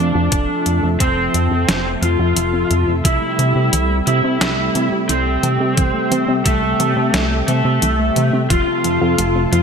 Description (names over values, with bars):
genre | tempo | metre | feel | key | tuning
synthwave | 88 BPM | 4/4 | straight | F major | A4 = 436 Hz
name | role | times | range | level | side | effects
lead guitar through a small cranked amp | melody | 0.0-9.6 s | A3 to F4 | -18 LUFS | equal | overdrive, ping-pong delay
lush unison pad | sustained chords | 0.0-9.6 s | C3 to E5 | -22 LUFS | equal | chorus, sidechain pumping
soft round pluck | arpeggios | 0.0-9.6 s | E3 to F4 | -28 LUFS | right 3 dB | none
chorused synth bass | bass | 0.0-9.6 s | F1 to C3 | -19 LUFS | equal | tube saturation, sidechain pumping
detuned 8-bit digital drum machine | drums | 0.3-9.6 s | hi-hat, snare drum | -21 LUFS | left 1 dB | overdrive
electronic kick drum | drums | 0.3-8.6 s | none | -18 LUFS | equal | overdrive
room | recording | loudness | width
moderate plate reverb, RT60 1.8 s, digital ambience | bright 1980s-style digital production | -14 LUFS | side -6 dB against mid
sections
0.0-9.6 A section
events
none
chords
0.0 F; 3.0 C6; 8.5 F